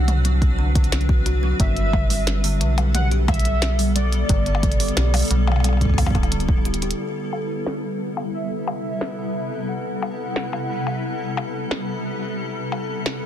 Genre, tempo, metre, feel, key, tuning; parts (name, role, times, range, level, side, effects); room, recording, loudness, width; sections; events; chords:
IDM; 89 BPM; 4/4; straight; A4 = 438 Hz
warm velvety synth lead; melody; 0.0-12.0 s; A4 to F#5; -31 LUFS; equal; chorus, vintage 12-bit sampler grit, ping-pong delay
granular cloud pad; sustained chords; 0.0-13.3 s; B2 to F#5; -28 LUFS; left 1 dB; built-in reverb
metallic FM bass; bass; 0.0-6.9 s; D1 to C2; -20 LUFS; equal
kalimba; arpeggios; 0.1-7.0 s; D3 to G4; -29 LUFS; right 1 dB; digital delay
glitchy drum kit; drums; 0.1-13.2 s; hi-hat, percussion blips, snare drum, toms; -27 LUFS; left 1 dB; low-pass filter on hats, low-pass filter on toms, low-pass filter on perc, soft clipping on snare, low-pass filter on snare
electronic kick drum; drums; 0.4-6.6 s; -20 LUFS; equal
bubbling stepped-filter texture; texture; 7.0-13.3 s; B3 to B4; -35 LUFS; right 1 dB; chorus, built-in reverb, sidechain pumping
little or no reverb; dense, heavily limited modern master; -19 LUFS; side -10 dB against mid
0.0-7.0 A section; 7.0-13.3 B section
drum fill 6.7-7.0; filter sweep on drum 7.0-13.3
0.0 D7; 1.6 Gmaj9; 7.0 Am7; 12.4 Gmaj9/B